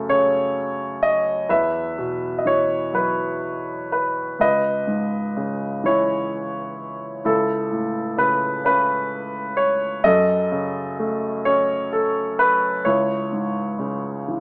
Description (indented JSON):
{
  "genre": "classical, lyrical solo piano",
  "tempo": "43 BPM (dotted quarters)",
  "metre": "6/8",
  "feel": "rubato",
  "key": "C# minor",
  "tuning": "A4 = 440 Hz",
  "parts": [
    { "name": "warm grand piano", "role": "solo", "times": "0.0-14.4 s", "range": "C#2 to E5", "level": "-22 LUFS", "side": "equal", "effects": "none" }
  ],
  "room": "moderate studio reverb, RT60 0.8 s",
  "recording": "small speaker sound",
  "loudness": "-22 LUFS",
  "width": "mono",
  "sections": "0.0-14.4 A section",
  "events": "none",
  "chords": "0.0 F#m; 1.5 Esus2; 4.4 C#m7; 7.2 Aadd9/C#; 10.0 F#m; 12.9 C#m"
}